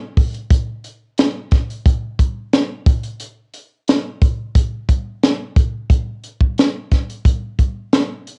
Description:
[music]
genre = indie pop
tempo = 89 BPM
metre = 4/4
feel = straight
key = none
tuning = none
[part]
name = compact cocktail drum kit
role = drums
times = 0.2-8.4 s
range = hi-hat, kick drum, snare drum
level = -17 LUFS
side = equal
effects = vintage 12-bit sampler grit
[sound]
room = moderate studio reverb, RT60 0.5 s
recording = home recording on cassette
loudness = -18 LUFS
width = mono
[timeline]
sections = 0.0-5.9 A section; 5.9-8.4 B section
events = none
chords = none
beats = | 0.51 1.18 1.85 2.53 | 3.20 3.87 4.55 5.22 | 5.90 6.57 7.25 7.92

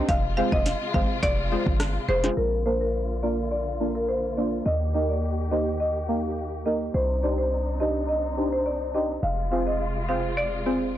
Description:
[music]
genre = dancehall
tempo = 105 BPM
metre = 4/4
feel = straight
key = F dorian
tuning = A4 = 438 Hz
[part]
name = deep mellow chord stab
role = accompaniment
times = 0.0-10.8 s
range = Ab3 to C5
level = -29 LUFS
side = right 1 dB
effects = chorus, sidechain pumping
[part]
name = warm studio string section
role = sustained chords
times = 0.0-11.0 s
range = C3 to G4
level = -34 LUFS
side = left 1 dB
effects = sidechain pumping
[part]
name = warm 808-style bass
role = bass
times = 0.0-11.0 s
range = F1 to Eb2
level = -29 LUFS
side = equal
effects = none
[part]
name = marimba with medium hard mallets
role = melody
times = 0.1-10.8 s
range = Bb4 to F5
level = -27 LUFS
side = left 1 dB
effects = ping-pong delay
[part]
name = afro-pop drum kit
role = drums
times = 0.1-2.4 s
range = hi-hat, kick drum, rim click, snare drum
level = -26 LUFS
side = equal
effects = vintage 12-bit sampler grit, soft clipping on snare
[sound]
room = light reverb, digital ambience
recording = blown-out, overdriven recording, overdrive, low-pass filter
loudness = -23 LUFS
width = side -12 dB against mid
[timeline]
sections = 0.0-2.4 A section; 2.4-11.0 B section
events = filter sweep 2.4-11.0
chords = 0.1 Fm; 2.4 Bb; 4.7 Eb; 6.9 Cmadd9; 9.2 Fm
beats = | 0.09 0.66 1.23 1.80 | 2.37 2.94 3.52 4.09 | 4.66 5.23 5.80 6.37 | 6.94 7.52 8.09 8.66 | 9.23 9.80 10.37 10.94

